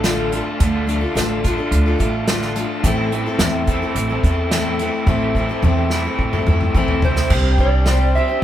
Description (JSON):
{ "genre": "folk rock and heartland rock", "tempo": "107 BPM", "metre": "4/4", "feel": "straight", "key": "D minor", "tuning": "A4 = 440 Hz", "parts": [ { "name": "picked steel-string acoustic guitar", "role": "accompaniment", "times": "0.0-8.4 s", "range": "A2 to C5", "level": "-22 LUFS", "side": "left 3 dB", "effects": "none" }, { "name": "bright tonewheel organ", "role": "sustained chords", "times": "0.0-8.4 s", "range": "G3 to A4", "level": "-33 LUFS", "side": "equal", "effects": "none" }, { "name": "raw garage guitar", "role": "riff", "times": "0.0-8.4 s", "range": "A2 to F4", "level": "-24 LUFS", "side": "right 1 dB", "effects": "overdrive, tremolo" }, { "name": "upright bass", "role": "bass", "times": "0.0-8.4 s", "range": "A1 to E2", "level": "-20 LUFS", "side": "right 1 dB", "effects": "none" }, { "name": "unplugged drum kit", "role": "drums", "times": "0.0-8.0 s", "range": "crash cymbal, hi-hat, kick drum, snare drum, toms", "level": "-20 LUFS", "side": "equal", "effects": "none" }, { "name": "electric slide guitar", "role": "melody", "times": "7.0-8.4 s", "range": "C5 to E5", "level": "-22 LUFS", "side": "right 3 dB", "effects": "none" } ], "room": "light reverb", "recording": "band playing live in one room", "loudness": "-16 LUFS", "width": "side -11 dB against mid", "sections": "0.0-7.3 A section; 7.3-8.4 B section", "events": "drum fill 5.1-7.3", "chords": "0.0 Dm; 2.8 Am; 7.3 Csus2" }